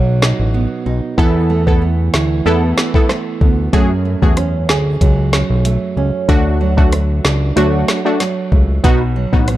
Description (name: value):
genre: dancehall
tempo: 94 BPM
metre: 4/4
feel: straight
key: F# minor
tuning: A4 = 440 Hz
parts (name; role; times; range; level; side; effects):
- nylon-string guitar; arpeggios; 0.0-9.6 s; F#2 to G#4; -20 LUFS; right 5 dB; none
- fat analog bass; bass; 0.0-9.6 s; A1 to F#2; -16 LUFS; equal; none
- island pop drum kit; drums; 0.2-9.6 s; hi-hat, kick drum, rim click, snare drum; -15 LUFS; equal; none
- synth brass stab; accompaniment; 1.2-9.5 s; A3 to A4; -18 LUFS; equal; chorus
room: little or no reverb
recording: dark, warm production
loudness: -12 LUFS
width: side -14 dB against mid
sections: 0.0-9.6 A section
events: break 0.0-3.7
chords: 0.0 B; 1.2 Esus4; 3.7 F#madd9; 6.3 D; 8.8 B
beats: 0.54 | 1.18 1.82 2.46 3.10 | 3.73 4.37 5.01 5.65 | 6.29 6.92 7.56 8.20 | 8.84 9.48